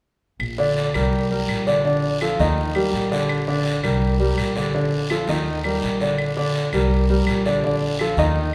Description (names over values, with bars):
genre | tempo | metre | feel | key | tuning
Afro-Cuban jazz | 166 BPM | 4/4 | straight | unclear | A4 = 436 Hz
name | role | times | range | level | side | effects
upright bass | bass | 0.4-8.5 s | Bb1 to Eb2 | -28 LUFS | equal | none
claves | percussion | 0.4-8.2 s | none | -36 LUFS | equal | none
guiro | percussion | 0.4-8.5 s | none | -34 LUFS | equal | none
warm baby grand piano | accompaniment | 0.6-8.5 s | D3 to Eb5 | -22 LUFS | equal | none
room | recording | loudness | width
wet recital hall reverb, RT60 1.6 s | recorded in a church or concert hall | -21 LUFS | mono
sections
0.4-8.5 A section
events
none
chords
0.4 C5; 1.9 Bbmaj7; 2.6 Eb; 3.3 C5; 4.7 Bbmaj7; 5.5 Eb; 6.2 C5; 7.6 Bbmaj7